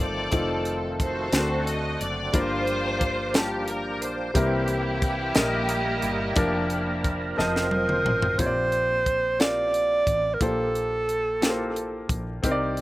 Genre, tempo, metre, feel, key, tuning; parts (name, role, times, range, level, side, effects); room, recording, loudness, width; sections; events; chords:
slow gospel; 60 BPM (dotted quarters); 6/8; straight; Bb major; A4 = 440 Hz
clear studio string section; melody; 0.0-7.7 s; Bb3 to Eb5; -29 LUFS; equal; slapback echo
warm baby grand piano; accompaniment; 0.0-12.8 s; G2 to A5; -29 LUFS; left 1 dB; slapback echo
overdriven tonewheel organ; sustained chords; 0.0-8.4 s; D3 to Eb5; -31 LUFS; right 1 dB; slow rotary speaker, chorus vibrato
woody fretless electric bass; bass; 0.0-12.8 s; F1 to D2; -32 LUFS; equal
crisp fusion drum kit; drums; 0.3-12.8 s; hi-hat, kick drum, snare drum, toms; -26 LUFS; equal
breathy alto saxophone; melody; 7.4-12.1 s; A4 to D5; -24 LUFS; right 2 dB; slapback echo
little or no reverb; recorded outdoors, with no room sound; -22 LUFS; side -17 dB against mid
0.0-8.4 A section; 8.4-12.8 B section
drum fill 7.4-8.4
0.0 F7; 1.3 D7; 2.3 Gm7; 4.4 C7; 5.4 Eb/Bb; 6.4 Bb/F; 7.4 F7; 8.4 Bb69; 10.4 Gm11/Bb